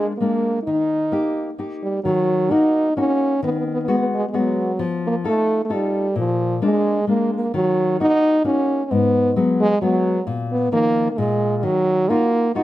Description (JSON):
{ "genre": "italian folk", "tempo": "131 BPM", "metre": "3/4", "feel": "swing 53% on 8ths", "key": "Eb minor", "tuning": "A4 = 440 Hz", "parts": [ { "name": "warm French horn", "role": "melody", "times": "0.0-12.6 s", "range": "F3 to Eb4", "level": "-19 LUFS", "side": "right 1 dB", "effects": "none" }, { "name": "nylon-string guitar", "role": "accompaniment", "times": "0.0-12.6 s", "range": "Ab2 to A4", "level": "-22 LUFS", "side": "left 3 dB", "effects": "none" } ], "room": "light reverb", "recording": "close, detailed microphones", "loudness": "-17 LUFS", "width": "side -14 dB against mid", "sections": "0.0-2.0 A section; 2.0-12.6 B section", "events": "none", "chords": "0.0 Bb7; 0.7 Eb; 2.0 Ebm; 3.4 Abm7/Eb; 4.8 F7; 6.2 Bb7; 7.5 Ebm; 8.9 Abm7; 10.3 Bbsus4; 11.2 N.C.; 11.6 Ebmadd9" }